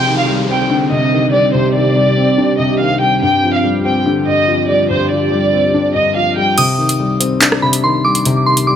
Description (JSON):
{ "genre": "hip hop, drill", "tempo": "143 BPM", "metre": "4/4", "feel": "half-time", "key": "C minor", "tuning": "A4 = 439 Hz", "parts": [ { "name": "warm chamber violin section", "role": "melody", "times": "0.0-6.6 s", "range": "C5 to G5", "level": "-15 LUFS", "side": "right 1 dB", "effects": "low-pass filter" }, { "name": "dark concert grand piano", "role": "accompaniment", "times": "0.0-8.8 s", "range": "G2 to D4", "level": "-15 LUFS", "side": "left 3 dB", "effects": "low-pass filter" }, { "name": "ethereal airy pad", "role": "sustained chords", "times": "0.0-6.5 s", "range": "C3 to G4", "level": "-20 LUFS", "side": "right 5 dB", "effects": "ensemble chorus, built-in reverb" }, { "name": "downlifter", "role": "sound effects", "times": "0.0-3.2 s", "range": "none", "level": "-25 LUFS", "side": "right 1 dB", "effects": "none" }, { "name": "soft synth bell", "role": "second line", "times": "6.6-8.8 s", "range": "B5 to Eb6", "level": "-17 LUFS", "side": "right 2 dB", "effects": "chorus, digital delay" }, { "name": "drill drum kit", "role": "drums", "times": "6.6-8.7 s", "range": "crash cymbal, handclaps, hi-hat, rim click", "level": "-15 LUFS", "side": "right 1 dB", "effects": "none" } ], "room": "light reverb, digital ambience", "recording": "none", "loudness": "-11 LUFS", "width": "side -9 dB against mid", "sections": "0.0-6.6 A section; 6.6-8.8 B section", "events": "kick muted 6.6-8.8", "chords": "0.0 Cmadd9; 3.2 G7sus4; 6.6 Cmadd9" }